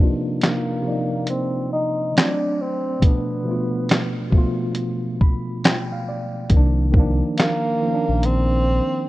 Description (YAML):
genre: lo-fi hip hop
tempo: 69 BPM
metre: 4/4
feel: swing 62% on 16ths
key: C dorian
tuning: A4 = 440 Hz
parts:
  - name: tine electric piano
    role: accompaniment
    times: 0.0-9.1 s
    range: B2 to B5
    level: -23 LUFS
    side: equal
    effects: overdrive, fast stereo tremolo, cassette tape, low-pass filter
  - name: breathy tenor saxophone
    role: melody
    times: 0.4-9.1 s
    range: Bb3 to Eb4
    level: -24 LUFS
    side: right 1 dB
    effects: low-pass filter
  - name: lo-fi sampler-style drum kit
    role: drums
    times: 0.4-8.5 s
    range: handclaps, hi-hat, kick drum, snare drum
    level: -17 LUFS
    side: equal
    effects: none
  - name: sub bass with octave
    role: bass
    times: 6.5-8.8 s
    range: Bb1 to C2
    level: -19 LUFS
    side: equal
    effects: none
room: digital ambience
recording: rough home demo mix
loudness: -18 LUFS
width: side -17 dB against mid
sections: 0.0-9.1 A section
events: filter sweep 0.0-9.1; tine electric piano fill 4.8-6.5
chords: 0.0 Cm11; 2.2 D7; 3.0 Bm7b5; 6.5 Cm11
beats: 0.42 1.29 2.16 | 3.03 3.90 4.77 5.63 | 6.50 7.38 8.24